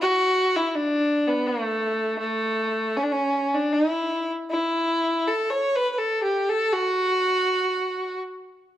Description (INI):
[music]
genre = celtic folk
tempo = 81 BPM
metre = 3/4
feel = rubato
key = unclear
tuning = A4 = 440 Hz
[part]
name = dark fiddle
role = solo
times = 0.0-8.2 s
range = A3 to C#5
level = -21 LUFS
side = equal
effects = none
[sound]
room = moderate recital hall reverb, RT60 1.4 s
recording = dark, warm production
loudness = -21 LUFS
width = side -12 dB against mid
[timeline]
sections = 0.0-8.8 A section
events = none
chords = none